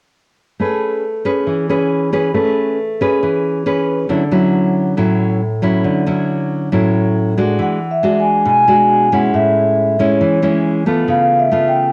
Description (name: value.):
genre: bossa nova.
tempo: 137 BPM.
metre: 4/4.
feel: straight.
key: A major.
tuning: A4 = 440 Hz.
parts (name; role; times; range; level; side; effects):
nylon-string guitar; accompaniment; 0.6-11.9 s; A2 to B4; -17 LUFS; equal; none.
vibraphone with soft mallets; melody; 7.6-11.9 s; C#5 to G#5; -16 LUFS; equal; cassette tape.
room: moderate spring reverb, RT60 1.3 s, small room ambience.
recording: home recording on cassette.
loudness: -15 LUFS.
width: mono.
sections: 0.6-7.6 A section; 7.6-11.9 B section.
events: none.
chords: 0.6 Amaj9; 4.1 Dmaj9; 7.6 E9; 9.3 Amaj7; 11.1 C#aug7.